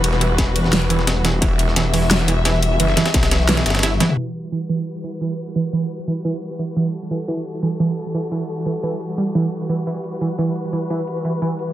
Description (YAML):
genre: dark technical drum and bass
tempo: 174 BPM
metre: 4/4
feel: straight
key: E minor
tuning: A4 = 439 Hz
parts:
  - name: dark chamber string section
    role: sustained chords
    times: 0.0-11.7 s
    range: E3 to E5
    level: -25 LUFS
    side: left 2 dB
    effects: sidechain pumping
  - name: snarling distorted saw bass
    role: bass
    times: 0.0-4.0 s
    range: E1 to B1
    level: -19 LUFS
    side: left 1 dB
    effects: distortion, sidechain pumping
  - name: breakbeat sampler-style drum kit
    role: drums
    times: 0.0-4.1 s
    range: hi-hat, ride cymbal, snare drum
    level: -24 LUFS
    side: equal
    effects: high-pass filter on cymbals, high-pass filter on snare, high-pass filter on hats
  - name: dubstep drum kit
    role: drums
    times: 0.0-11.7 s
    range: crash cymbal, hi-hat, snare drum, toms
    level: -20 LUFS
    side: left 2 dB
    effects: low-pass filter on hats, low-pass filter on snare, low-pass filter on toms, low-pass filter on cymbals
  - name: analog pluck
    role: arpeggios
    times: 0.2-11.5 s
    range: E3 to E4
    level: -22 LUFS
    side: right 3 dB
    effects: chorus, cassette tape, sidechain pumping, tape echo
  - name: electronic kick drum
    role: drums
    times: 0.4-3.2 s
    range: none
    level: -20 LUFS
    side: left 1 dB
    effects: distortion
room: light reverb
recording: low-pass filter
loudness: -18 LUFS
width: side -13 dB against mid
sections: 0.0-4.2 A section; 4.2-11.7 B section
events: kick drops out 3.5-4.2; drum fill 4.0; filter sweep on drum 4.2-11.7; filter sweep 4.2-11.7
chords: 0.0 Emadd9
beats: | 0.04 0.38 0.73 1.07 | 1.42 1.76 2.11 2.45 | 2.80 3.14 3.49 3.83 | 4.18 4.52 4.87 5.21 | 5.56 5.90 6.25 6.59 | 6.94 7.28 7.63 7.97 | 8.31 8.66 9.01 9.35 | 9.70 10.04 10.38 10.73 | 11.07 11.42